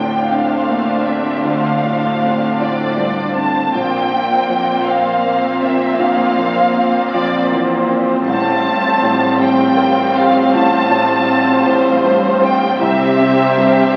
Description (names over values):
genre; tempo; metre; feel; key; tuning
cinematic, emotional film score for orchestra; 53 BPM (dotted quarters); 6/8; rubato; F major; A4 = 445 Hz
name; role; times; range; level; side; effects
warm symphonic violin section; melody; 0.0-14.0 s; C5 to A5; -20 LUFS; equal; none
warm symphonic violin section; second line; 0.0-14.0 s; F4 to C5; -23 LUFS; equal; none
felt-muted upright piano; accompaniment; 0.0-14.0 s; A1 to Bb4; -22 LUFS; equal; none
rich symphonic viola section; accompaniment; 0.0-14.0 s; G3 to D4; -21 LUFS; equal; none
rich symphonic cello section; bass; 0.0-13.9 s; A2 to D3; -25 LUFS; equal; none
rich symphonic double bass section; bass; 0.0-13.9 s; A1 to D2; -37 LUFS; equal; none
room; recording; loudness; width
wet scoring stage reverb, RT60 1.6 s; very old 78 rpm record, vinyl crackle; -15 LUFS; mono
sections
0.0-14.0 A section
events
none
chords
0.0 Dm7; 3.7 Bbsus2; 8.3 Fadd9/A; 12.8 C